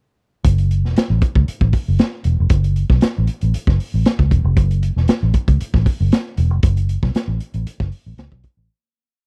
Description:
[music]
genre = funk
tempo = 116 BPM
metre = 4/4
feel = straight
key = F# minor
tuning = A4 = 444 Hz
[part]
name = crunchy breakbeat drum kit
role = drums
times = 0.4-8.6 s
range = hi-hat, kick drum, snare drum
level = -19 LUFS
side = equal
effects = none
[part]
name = vintage muted fingered electric bass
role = bass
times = 0.5-8.7 s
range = E1 to C#2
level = -19 LUFS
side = equal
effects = tube saturation
[sound]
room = little or no reverb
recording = dry, close 1970s-style studio recording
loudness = -17 LUFS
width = mono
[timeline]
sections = 0.4-8.7 groove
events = fade-out 6.6-8.7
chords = none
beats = | 0.45 0.96 1.48 1.99 | 2.50 3.02 3.54 4.05 | 4.57 5.08 5.60 6.12 | 6.63 7.15 7.67 8.18

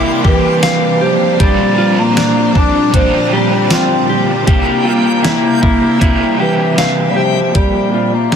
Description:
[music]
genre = dream pop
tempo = 78 BPM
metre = 4/4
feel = straight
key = Bb lydian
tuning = A4 = 441 Hz
[part]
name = raw garage guitar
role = accompaniment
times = 0.0-8.1 s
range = Bb2 to F4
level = -20 LUFS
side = right 3 dB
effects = overdrive, tremolo, lush chorus
[part]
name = string machine, violins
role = sustained chords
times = 0.0-8.4 s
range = Bb2 to G4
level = -18 LUFS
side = equal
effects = ensemble chorus
[part]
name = mellow electric guitar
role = arpeggios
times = 0.0-8.4 s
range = D4 to F5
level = -18 LUFS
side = left 3 dB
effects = wide subtle chorus, tape echo
[part]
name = detuned 8-bit digital drum machine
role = drums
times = 0.2-8.4 s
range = hi-hat, kick drum, snare drum, tambourine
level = -14 LUFS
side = equal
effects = none
[part]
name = mellow bass clarinet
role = melody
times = 0.3-8.4 s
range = E3 to D4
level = -15 LUFS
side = equal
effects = tape echo
[part]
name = backwards swelling texture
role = texture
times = 0.5-7.9 s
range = E5 to Bb5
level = -24 LUFS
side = left 3 dB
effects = built-in reverb, tape echo
[sound]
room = light reverb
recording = dense, heavily limited modern master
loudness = -10 LUFS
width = side -7 dB against mid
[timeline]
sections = 0.0-7.6 A section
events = none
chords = 0.0 C7; 1.4 Bb69; 4.5 C7; 7.6 Bb69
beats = 0.63 | 1.40 2.17 2.94 3.71 | 4.48 5.25 6.02 6.79 | 7.56 8.32

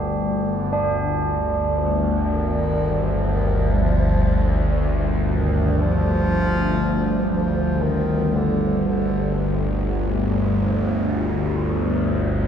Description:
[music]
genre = dark ambient drone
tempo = free time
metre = none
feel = none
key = unclear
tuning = A4 = 440 Hz
[part]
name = mellow bass clarinet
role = melody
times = 0.0-9.6 s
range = D3 to G3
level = -26 LUFS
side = left 1 dB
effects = analog delay
[part]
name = tubular bells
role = arpeggios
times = 0.0-9.9 s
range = D4 to G4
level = -28 LUFS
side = right 3 dB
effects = analog delay
[part]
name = bowed-like drone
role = drone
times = 0.0-12.5 s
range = G1 to D2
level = -20 LUFS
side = equal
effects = built-in reverb, phaser
[sound]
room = wet echo chamber reverb, RT60 2.3 s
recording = echo-heavy mix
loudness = -19 LUFS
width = side -8 dB against mid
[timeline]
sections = 0.0-12.5 A section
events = none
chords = 0.0 G5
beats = free time

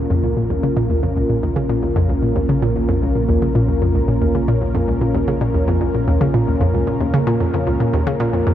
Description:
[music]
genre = ambient, sequencer-driven space music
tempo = 113 BPM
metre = 4/4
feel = straight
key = Bb minor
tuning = A4 = 439 Hz
[part]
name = sweeping resonant pad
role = sustained chords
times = 0.0-8.5 s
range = Bb3 to Bb4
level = -20 LUFS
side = equal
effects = chorus
[part]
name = hollow square pluck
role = riff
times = 0.0-8.5 s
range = Db2 to Db3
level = -17 LUFS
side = equal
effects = chorus, analog delay
[part]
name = round analog bass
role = bass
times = 0.0-8.5 s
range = Bb1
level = -26 LUFS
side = equal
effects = none
[sound]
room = wet huge ambient reverb, RT60 8.5 s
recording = dark, warm production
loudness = -15 LUFS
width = side -11 dB against mid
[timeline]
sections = 0.0-8.5 A section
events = none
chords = 0.0 Bbm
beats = 0.50 | 1.03 1.56 2.09 2.62 | 3.16 3.69 4.22 4.75 | 5.28 5.81 6.34 6.87 | 7.40 7.93 8.47

